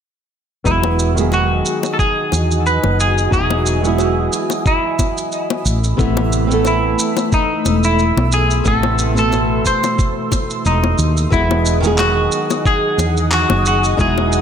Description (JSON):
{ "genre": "sunset chillout", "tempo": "90 BPM", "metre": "4/4", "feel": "swing 55% on 16ths", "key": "E major", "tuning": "A4 = 440 Hz", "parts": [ { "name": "flamenco guitar", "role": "accompaniment", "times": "0.6-14.4 s", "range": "B2 to A4", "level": "-21 LUFS", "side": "moving between left 3 dB and right 5 dB", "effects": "auto-pan, low-pass filter, digital delay" }, { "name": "semi-hollow electric guitar", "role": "melody", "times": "0.7-14.4 s", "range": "D#4 to C5", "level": "-19 LUFS", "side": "equal", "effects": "wide subtle chorus, digital delay" }, { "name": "lush unison pad", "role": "sustained chords", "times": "1.0-14.4 s", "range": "A3 to E6", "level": "-23 LUFS", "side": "equal", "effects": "chorus, phaser" }, { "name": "woody fretless electric bass", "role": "bass", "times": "0.7-14.4 s", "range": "E1 to E2", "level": "-17 LUFS", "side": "equal", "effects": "none" }, { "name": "electronic kick drum", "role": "drums", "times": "0.7-14.1 s", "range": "none", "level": "-18 LUFS", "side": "equal", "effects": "none" }, { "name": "electronic shaker and handclaps", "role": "drums", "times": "0.7-14.4 s", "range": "none", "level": "-25 LUFS", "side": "right 3 dB", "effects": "none" }, { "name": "bongos", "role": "percussion", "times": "0.8-14.3 s", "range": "none", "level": "-25 LUFS", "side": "left 8 dB", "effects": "none" } ], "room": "moderate recital hall reverb, RT60 1.6 s", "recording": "none", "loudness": "-14 LUFS", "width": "side -8 dB against mid", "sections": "0.7-14.4 A section", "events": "filter sweep on nylon-string guitar 0.7-14.4", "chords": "0.7 Emaj9; 5.7 Amadd9; 11.3 Emaj9" }